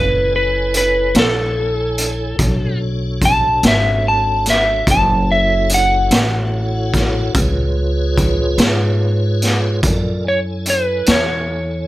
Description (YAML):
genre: slow blues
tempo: 48 BPM (dotted quarters)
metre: 12/8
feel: straight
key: F# minor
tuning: A4 = 440 Hz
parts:
  - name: electric slide guitar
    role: melody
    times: 0.0-11.9 s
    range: A4 to A5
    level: -16 LUFS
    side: equal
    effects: plate reverb
  - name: tonewheel organ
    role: sustained chords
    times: 0.0-11.9 s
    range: D4 to G#5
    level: -24 LUFS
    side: equal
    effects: chorus vibrato, slow rotary speaker, plate reverb
  - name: upright bass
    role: bass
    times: 0.0-11.9 s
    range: F#1 to G#2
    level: -19 LUFS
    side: equal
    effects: none
  - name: raw garage drum kit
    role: drums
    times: 0.7-11.3 s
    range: hi-hat, kick drum, snare drum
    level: -17 LUFS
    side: equal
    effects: none
room: light reverb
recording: none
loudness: -14 LUFS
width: side -16 dB against mid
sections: 0.0-9.8 A section; 9.8-11.9 B section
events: electric slide guitar solo 0.0-9.8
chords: 0.0 F#m7; 2.4 Bm7; 4.9 F#m7; 7.4 C#7; 9.8 F#m7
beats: 1.15 2.39 3.63 | 4.87 6.11 7.35 8.59 | 9.83 11.08